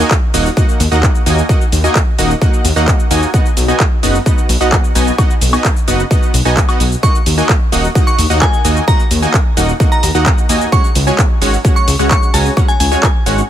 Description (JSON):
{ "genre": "EDM, festival progressive house", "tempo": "130 BPM", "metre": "4/4", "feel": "straight", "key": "Eb minor", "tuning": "A4 = 440 Hz", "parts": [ { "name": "supersaw stab", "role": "riff", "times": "0.0-13.4 s", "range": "Ab3 to Ab5", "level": "-17 LUFS", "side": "right 1 dB", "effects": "sidechain pumping, ping-pong delay" }, { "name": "wide detuned saw bass", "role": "bass", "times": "0.0-13.4 s", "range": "Eb1 to Eb2", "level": "-14 LUFS", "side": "equal", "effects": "chorus, sidechain pumping" }, { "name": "pop drum kit", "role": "drums", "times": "0.0-13.5 s", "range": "cabasa, handclaps, hi-hat, woodblock", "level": "-19 LUFS", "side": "equal", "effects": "none" }, { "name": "electronic kick drum", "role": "drums", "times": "0.1-13.1 s", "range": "none", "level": "-13 LUFS", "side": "equal", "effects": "none" }, { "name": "glassy synth bell", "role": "melody", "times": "7.0-13.4 s", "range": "Ab5 to Db6", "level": "-20 LUFS", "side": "equal", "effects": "chorus, tremolo, ping-pong delay" } ], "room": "little or no reverb", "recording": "none", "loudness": "-10 LUFS", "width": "side -11 dB against mid", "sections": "0.0-13.5 A section", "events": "none", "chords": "0.0 Ebm; 3.3 B; 7.0 Ebm; 10.7 Dbsus4", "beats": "0.11 0.57 1.03 | 1.49 1.95 2.42 2.88 | 3.34 3.80 4.26 4.72 | 5.18 5.65 6.11 6.57 | 7.03 7.49 7.95 8.42 | 8.88 9.34 9.80 10.26 | 10.72 11.19 11.65 12.11 | 12.57 13.03" }